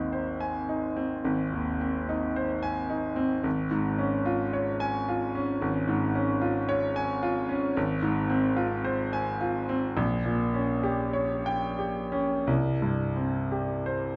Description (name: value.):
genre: classical, romantic nocturne for solo piano.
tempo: 43-57 BPM.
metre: 4/4.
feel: rubato.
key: F minor from 7.8 s.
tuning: A4 = 443 Hz.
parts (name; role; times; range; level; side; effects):
clear grand piano; solo; 0.0-14.2 s; Ab1 to Ab5; -28 LUFS; equal; none.
room: moderate recital hall reverb, RT60 1.3 s.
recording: none.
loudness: -28 LUFS.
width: mono.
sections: 0.0-14.2 A section.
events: none.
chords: 0.0 Ab; 3.5 Db/Ab; 7.8 Fm/Ab; 10.0 Gdim/Bb; 12.5 C5.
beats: 0.12 1.25 2.38 | 3.45 4.54 5.62 6.69 | 7.76 8.84 9.97 11.14 | 12.47 13.86.